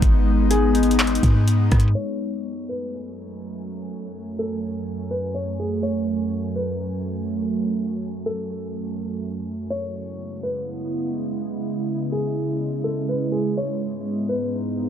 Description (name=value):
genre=hip hop, atmospheric cloud-rap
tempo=124 BPM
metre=4/4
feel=half-time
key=F# dorian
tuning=A4 = 440 Hz
part: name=glassy FM pad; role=sustained chords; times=0.0-14.9 s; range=F#2 to G#5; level=-25 LUFS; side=equal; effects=ensemble chorus, built-in reverb, sidechain pumping
part: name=clean 808-style bass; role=bass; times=0.0-1.9 s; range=G#1 to G#2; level=-19 LUFS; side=equal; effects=none
part: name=smooth R&B drum kit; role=drums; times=0.0-2.0 s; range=handclaps, hi-hat, kick drum, rim click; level=-21 LUFS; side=equal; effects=none
part: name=felt-muted upright piano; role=melody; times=0.5-14.5 s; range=G#4 to C#5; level=-29 LUFS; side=equal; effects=digital delay
room=light reverb, digital ambience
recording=low-pass filter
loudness=-22 LUFS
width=side -9 dB against mid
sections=0.0-2.0 A section; 2.0-14.9 B section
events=filter sweep 2.0-14.9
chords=0.0 G#m; 2.0 F#madd9; 9.7 C#m7; 13.6 G#m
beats=| 0.02 0.51 0.99 1.48 | 1.96 2.44 2.93 3.41 | 3.90 4.38 4.86 5.35 | 5.83 6.31 6.80 7.28 | 7.76 8.25 8.73 9.22 | 9.70 10.19 10.67 11.15 | 11.64 12.12 12.60 13.09 | 13.57 14.06 14.54